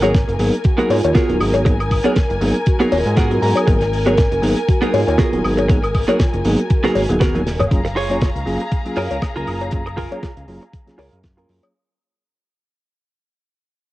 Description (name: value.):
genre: nu-disco, nu disco.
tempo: 119 BPM.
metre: 4/4.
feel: swing 56% on 16ths.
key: F# major.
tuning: A4 = 441 Hz.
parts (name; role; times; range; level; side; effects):
soft octave-layered synth lead; melody; 0.0-7.5 s; E#4 to A#4; -25 LUFS; equal; chorus, phaser, analog delay.
bell-like tine electric piano; accompaniment; 0.0-11.7 s; F#3 to A#4; -22 LUFS; equal; sidechain pumping, low-pass filter, cassette tape.
dark symphonic violin section; sustained chords; 0.0-11.7 s; G#4 to A#5; -25 LUFS; left 1 dB; sidechain pumping, low-pass filter, cassette tape.
direct-recorded clean electric guitar; riff; 0.0-11.6 s; B3 to A#5; -22 LUFS; right 2 dB; wide subtle chorus, low-pass filter, cassette tape.
fat analog bass; bass; 0.0-11.6 s; D#1 to G#2; -22 LUFS; equal; sidechain pumping.
damped 70s drum kit; drums; 0.0-11.7 s; hi-hat, snare drum, toms, woodblock; -26 LUFS; right 1 dB; cassette tape.
cowbell; percussion; 0.0-11.7 s; none; -22 LUFS; left 4 dB; none.
electronic kick drum; drums; 0.1-11.4 s; none; -17 LUFS; equal; overdrive, cassette tape.
room: light reverb.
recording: home recording on cassette.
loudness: -15 LUFS.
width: side -16 dB against mid.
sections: 0.0-7.7 A section; 7.7-11.7 B section.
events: drop 0.0-7.7; clean electric guitar fill 2.7-3.7; drum fill 7.3-7.7; fade-out 7.7-11.7; filter sweep on clean electric guitar 7.7-11.7; filter sweep on tine electric piano 7.7-11.7; filter sweep on violin section 7.7-11.7.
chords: 0.0 G#m9; 7.7 F#maj9.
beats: 0.15 0.65 1.16 | 1.66 2.16 2.67 3.17 | 3.68 4.18 4.68 5.19 | 5.69 6.20 6.70 7.21 | 7.71 8.21 8.72 9.22 | 9.73 10.23 10.73 11.24.